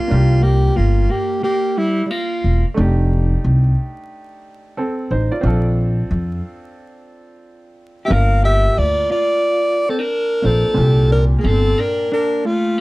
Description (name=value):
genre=hip hop, jazz-hop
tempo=90 BPM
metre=4/4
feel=swing 63% on 16ths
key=unclear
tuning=A4 = 436 Hz
part: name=breathy alto saxophone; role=melody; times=0.0-2.6, 8.1-12.8 s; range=E4 to F5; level=-18 LUFS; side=equal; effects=none
part: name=electric guitar at the edge of break-up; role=second line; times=0.0-2.6, 8.1-12.8 s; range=G3 to Bb4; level=-24 LUFS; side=right 1 dB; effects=none
part: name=warm upright piano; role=accompaniment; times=0.0-12.8 s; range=Bb2 to D5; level=-26 LUFS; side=right 2 dB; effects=none
part: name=upright bass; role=bass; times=0.1-11.7 s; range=E1 to F2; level=-15 LUFS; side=equal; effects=none
room=light reverb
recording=dark, warm production, vinyl crackle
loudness=-14 LUFS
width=side -20 dB against mid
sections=0.0-12.8 A section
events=none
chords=0.1 C9sus4; 2.8 F13; 5.4 Bbmaj7; 8.1 Gm7